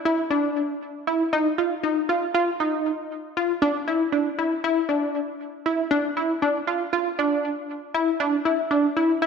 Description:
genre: progressive instrumental, progressive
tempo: 236 BPM (eighths)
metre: 9/8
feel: straight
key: unclear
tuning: A4 = 436 Hz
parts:
  - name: tight sequenced synth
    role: solo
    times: 0.1-9.3 s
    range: D4 to F4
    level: -22 LUFS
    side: equal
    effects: chorus, ping-pong delay
room: wet lush hall reverb, RT60 1.8 s, digital ambience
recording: dreamy mix soaked in reverb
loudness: -22 LUFS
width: side -6 dB against mid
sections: 0.0-9.3 A section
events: none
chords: none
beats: 0.06 0.31 0.56 0.82 1.07 | 1.33 1.58 1.84 2.09 2.35 2.60 2.85 3.11 3.36 | 3.62 3.87 4.13 4.38 4.64 4.89 5.15 5.40 5.66 | 5.91 6.16 6.42 6.67 6.93 7.18 7.44 7.69 7.95 | 8.20 8.46 8.71 8.96 9.22

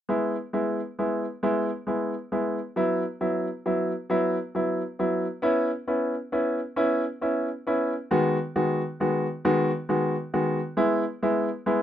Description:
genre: pop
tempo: 45 BPM (dotted quarters)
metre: 6/8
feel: straight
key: unclear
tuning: A4 = 440 Hz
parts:
  - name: clear concert grand piano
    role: accompaniment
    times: 0.1-11.8 s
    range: D#3 to F#4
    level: -24 LUFS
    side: equal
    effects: none
room: light reverb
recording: rough home demo mix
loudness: -24 LUFS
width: side -10 dB against mid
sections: 0.1-10.8 A section; 10.8-11.8 B section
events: none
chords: 0.1 E; 2.8 Bsus4; 5.4 C#m7; 8.1 G#m7/D#; 10.8 E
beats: | 0.08 1.42 | 2.76 4.09 | 5.43 6.76 | 8.10 9.43 | 10.76

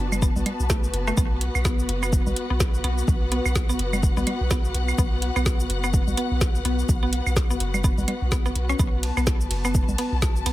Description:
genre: minimal techno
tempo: 126 BPM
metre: 4/4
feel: swing 58% on 16ths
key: unclear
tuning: A4 = 440 Hz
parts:
  - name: punchy sub bass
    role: bass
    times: 0.0-10.5 s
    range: F#1 to B1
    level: -26 LUFS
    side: equal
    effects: sidechain pumping
  - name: warm symphonic string section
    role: texture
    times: 0.0-10.5 s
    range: B3 to A5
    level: -30 LUFS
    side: left 2 dB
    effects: sidechain pumping
  - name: garage drum kit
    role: drums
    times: 0.1-10.5 s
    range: cabasa, hi-hat, ride cymbal, snare drum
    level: -30 LUFS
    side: equal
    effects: none
  - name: congas and claves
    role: percussion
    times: 0.1-10.5 s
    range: none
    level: -30 LUFS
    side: right 3 dB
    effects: digital delay
  - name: mallet-like synth pluck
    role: riff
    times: 0.2-10.5 s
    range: A3 to C#4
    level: -32 LUFS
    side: equal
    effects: chorus, sidechain pumping, digital delay
  - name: electronic kick drum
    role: drums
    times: 0.2-10.3 s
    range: none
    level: -23 LUFS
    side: equal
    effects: overdrive
room: digital ambience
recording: none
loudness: -21 LUFS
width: side -15 dB against mid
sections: 0.0-10.5 A section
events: none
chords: 0.0 B5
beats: 0.22 0.70 | 1.17 1.65 2.13 2.60 | 3.08 3.56 4.03 4.51 | 4.98 5.46 5.94 6.41 | 6.89 7.37 7.84 8.32 | 8.79 9.27 9.75 10.22

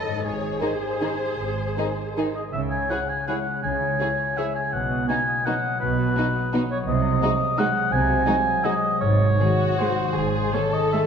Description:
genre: classical, orchestral ballroom waltz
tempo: 148-186 BPM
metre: 3/4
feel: rubato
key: C# minor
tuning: A4 = 440 Hz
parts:
  - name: warm studio violin section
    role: melody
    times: 0.0-11.0 s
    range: F#4 to D#5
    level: -35 LUFS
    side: left 3 dB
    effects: none
  - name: concert harp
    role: arpeggios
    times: 0.0-11.1 s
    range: F#2 to D#5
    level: -28 LUFS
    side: left 4 dB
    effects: none
  - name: warm studio cello section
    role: bass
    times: 0.0-10.5 s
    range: G#2 to A4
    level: -29 LUFS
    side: right 4 dB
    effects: none
  - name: warm studio double bass section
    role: bass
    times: 0.2-10.5 s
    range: G#1 to C#2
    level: -30 LUFS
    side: right 4 dB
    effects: none
  - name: rich studio violin section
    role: second line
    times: 0.6-11.1 s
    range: D#4 to A4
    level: -30 LUFS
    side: left 3 dB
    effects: none
  - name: dark studio viola section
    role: accompaniment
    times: 0.6-11.0 s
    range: D#3 to E4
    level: -31 LUFS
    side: right 2 dB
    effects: none
  - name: warm oboe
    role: second line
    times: 2.4-11.0 s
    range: B4 to G#5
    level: -24 LUFS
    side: right 1 dB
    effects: none
room: wet concert hall reverb, RT60 1.9 s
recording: minimal, uncompressed stereo recording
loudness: -21 LUFS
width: side -7 dB against mid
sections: 0.0-2.5 A section; 2.5-11.1 B section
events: none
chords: 0.2 G#; 2.5 C#m; 4.7 B; 6.9 G#7/B#; 9.0 G#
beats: | 0.24 0.62 1.02 | 1.40 1.78 2.17 | 2.54 2.90 3.28 | 3.64 4.00 4.37 | 4.73 5.09 5.46 | 5.81 6.17 6.54 | 6.88 7.22 7.59 | 7.92 8.27 8.65 | 9.02 9.40 9.80 | 10.16 10.54 10.93

